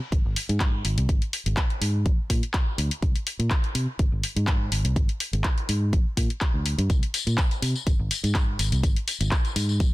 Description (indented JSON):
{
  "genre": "filtered disco house",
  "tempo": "124 BPM",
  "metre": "4/4",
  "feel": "swing 54% on 16ths",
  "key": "unclear",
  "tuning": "A4 = 435 Hz",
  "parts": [
    { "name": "fingered electric bass", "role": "bass", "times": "0.1-9.9 s", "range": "Ab1 to C3", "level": "-25 LUFS", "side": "equal", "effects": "sidechain pumping, low-pass filter" },
    { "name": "electronic kick drum", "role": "drums", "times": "0.1-9.9 s", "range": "none", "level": "-23 LUFS", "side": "equal", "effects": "none" },
    { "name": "house drum kit", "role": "drums", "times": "0.1-9.9 s", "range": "handclaps, hi-hat, tambourine", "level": "-29 LUFS", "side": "left 2 dB", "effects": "sidechain pumping on hats, sidechain pumping on cymbals, sidechain pumping on perc" }
  ],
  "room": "digital ambience",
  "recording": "dense, heavily limited modern master",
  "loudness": "-22 LUFS",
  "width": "side -18 dB against mid",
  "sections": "0.0-9.9 A section",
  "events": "filter sweep on fingered electric bass 0.0-9.9",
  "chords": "none"
}